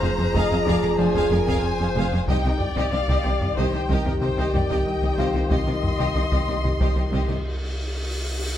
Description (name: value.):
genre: cinematic, hybrid orchestral and electronic film score.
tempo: 93 BPM.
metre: 5/4.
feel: straight.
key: C minor.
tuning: A4 = 441 Hz.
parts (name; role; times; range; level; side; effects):
warm symphonic violin section; melody; 0.0-7.4 s; F5 to C6; -32 LUFS; left 1 dB; none.
warm symphonic violin section; second line; 0.0-7.4 s; G4 to F5; -32 LUFS; equal; none.
warm chamber viola section; accompaniment; 0.0-7.4 s; Eb4 to Eb5; -29 LUFS; left 4 dB; none.
mellow French horn section; sustained chords; 0.0-7.4 s; Eb3 to Ab4; -26 LUFS; left 1 dB; none.
rubbery square bass; riff; 0.0-7.4 s; C2 to F3; -28 LUFS; left 1 dB; none.
pure sine sub bass; bass; 0.0-8.6 s; F1 to C2; -29 LUFS; equal; none.
rich symphonic cello section; bass; 0.0-7.3 s; F2 to C3; -30 LUFS; right 1 dB; none.
rich symphonic double bass section; bass; 0.0-7.2 s; F1 to C2; -29 LUFS; right 2 dB; none.
dark grand piano; texture; 0.0-8.6 s; D4 to G5; -39 LUFS; left 1 dB; none.
taiko ensemble; drums; 0.2-7.4 s; none; -29 LUFS; equal; none.
cymbal swell; sound effects; 6.8-8.6 s; none; -33 LUFS; left 1 dB; none.
room: light reverb.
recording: close, detailed microphones.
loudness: -20 LUFS.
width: side -11 dB against mid.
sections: 0.0-8.6 A section.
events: cymbal swell 6.8-8.6; break 7.4-8.6.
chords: 0.0 Fm; 2.3 Cm.